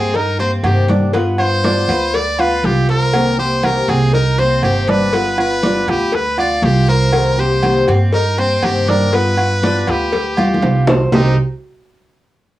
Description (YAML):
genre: latin, Cuban son and guajira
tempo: 120 BPM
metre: 4/4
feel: straight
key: C minor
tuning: A4 = 440 Hz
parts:
  - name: brilliant trumpet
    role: melody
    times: 0.0-11.4 s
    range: Eb4 to D5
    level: -18 LUFS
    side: left 1 dB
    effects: cassette tape
  - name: nylon-string guitar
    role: accompaniment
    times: 0.0-11.3 s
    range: C3 to G4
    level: -21 LUFS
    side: left 3 dB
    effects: cassette tape
  - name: Cuban tres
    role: arpeggios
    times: 0.0-11.4 s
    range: B3 to C5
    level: -21 LUFS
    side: right 2 dB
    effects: cassette tape
  - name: upright bass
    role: bass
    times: 0.0-11.4 s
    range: G1 to G2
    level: -18 LUFS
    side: right 1 dB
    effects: none
  - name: congas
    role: percussion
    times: 0.1-11.2 s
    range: none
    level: -21 LUFS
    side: equal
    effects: none
  - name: cowbell and bongos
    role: percussion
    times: 0.1-11.2 s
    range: none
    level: -23 LUFS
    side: left 4 dB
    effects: none
  - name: agogo bells and timbales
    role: percussion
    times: 0.4-11.2 s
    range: none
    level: -23 LUFS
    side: right 3 dB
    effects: none
room: light reverb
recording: home recording on cassette, small room ambience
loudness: -12 LUFS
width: side -15 dB against mid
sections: 0.0-11.1 A section; 11.1-12.6 B section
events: drum fill 10.4-11.1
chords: 0.0 Cm7; 1.1 G7; 3.1 Cm7; 5.1 G7; 7.1 Cm7; 9.1 G7; 11.1 Cm7